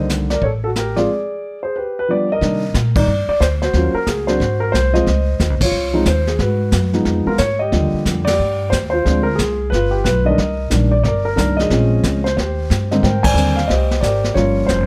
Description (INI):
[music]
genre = jazz piano trio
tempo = 181 BPM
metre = 4/4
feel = swing 64% on 8ths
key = C minor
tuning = A4 = 439 Hz
[part]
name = warm concert grand piano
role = melody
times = 0.0-14.9 s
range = Ab2 to Ab5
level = -20 LUFS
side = equal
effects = none
[part]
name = upright bass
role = bass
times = 0.0-14.9 s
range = F1 to C3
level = -21 LUFS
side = equal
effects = none
[part]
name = jazz brush drum kit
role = drums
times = 0.1-14.9 s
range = brushed snare drum, hi-hat, kick drum, ride cymbal, snare drum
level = -25 LUFS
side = equal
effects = none
[sound]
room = little or no reverb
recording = none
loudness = -17 LUFS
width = mono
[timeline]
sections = 0.0-2.4 A section; 2.4-13.0 A section; 13.0-14.9 B section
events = band accent 2.9, 5.6, 8.2, 13.2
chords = 0.4 Amaj7(#5, no3); 1.1 N.C.; 1.7 G7; 2.4 Cm7; 3.7 Ebm7; 4.4 Ab7; 5.1 Dbmaj9; 6.4 Abm7; 7.1 Fm7b5; 7.7 Ebmaj7; 9.0 Dm7b5; 9.7 G7; 10.4 Cm7; 11.7 Bbm7; 12.4 Eb; 13.0 Abmaj9#11; 14.4 Gm7b5